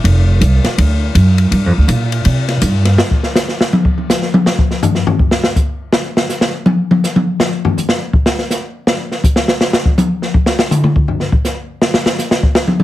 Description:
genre	jazz, small-group swing and bop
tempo	163 BPM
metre	4/4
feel	swing 63% on 8ths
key	unclear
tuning	A4 = 440 Hz
part	upright bass	bass	0.0-3.0 s	F1 to C3	-10 LUFS	right 1 dB	none
part	open jazz drum kit	drums	0.0-12.8 s	hi-hat, kick drum, ride cymbal, snare drum, toms	-13 LUFS	left 1 dB	none
room	light reverb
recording	heavily compressed radio sound, multiband compression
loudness	-11 LUFS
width	side -14 dB against mid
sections	0.0-3.0 A section; 3.0-12.8 B section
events	drum solo 3.0-12.8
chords	none

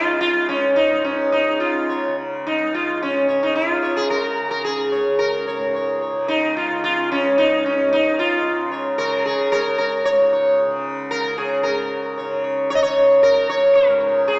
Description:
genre	indian classical, Hindustani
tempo	107-116 BPM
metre	3/4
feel	straight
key	Db raga bhupali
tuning	A4 = 440 Hz
part	sitar	melody	0.0-14.4 s	Db4 to Eb5	-17 LUFS	equal	none
part	tanpura	drone	0.0-14.4 s	Db2 to Db3	-28 LUFS	equal	none
room	wet concert hall reverb, RT60 2.3 s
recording	heard from further back in the room, small speaker sound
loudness	-16 LUFS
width	side -30 dB against mid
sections	0.0-11.6 A section; 11.6-14.4 B section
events	speeding up 0.0-14.4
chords	none

